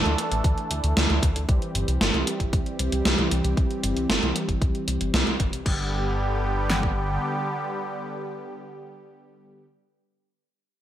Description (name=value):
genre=synthwave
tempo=115 BPM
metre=4/4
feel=straight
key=G major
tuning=A4 = 440 Hz
part: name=soft supersaw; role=sustained chords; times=0.0-9.7 s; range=D3 to A4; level=-28 LUFS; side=equal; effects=phaser, sidechain pumping, low-pass filter
part: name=chorused synth bass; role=bass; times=0.0-7.2 s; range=G1 to D2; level=-26 LUFS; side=equal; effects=sidechain pumping
part: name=gated 80s digital drum machine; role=drums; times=0.1-5.8 s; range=crash cymbal, hi-hat, snare drum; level=-25 LUFS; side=right 1 dB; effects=gated reverb, gated reverb snare, overdrive
part: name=pop drum kit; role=drums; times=0.4-7.0 s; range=kick drum, snare drum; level=-24 LUFS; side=equal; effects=gated reverb
room=moderate plate reverb, RT60 1.7 s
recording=bright 1980s-style digital production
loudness=-22 LUFS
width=side -11 dB against mid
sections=0.0-5.7 A section; 5.7-9.8 B section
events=filter sweep on supersaw synth 0.0-5.7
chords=0.0 Dsus2; 1.5 C; 5.7 G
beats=0.44 0.96 | 1.49 2.01 2.53 3.05 | 3.57 4.09 4.62 5.14 | 5.66 6.18 6.70 7.23 | 7.75 8.27 8.79 9.31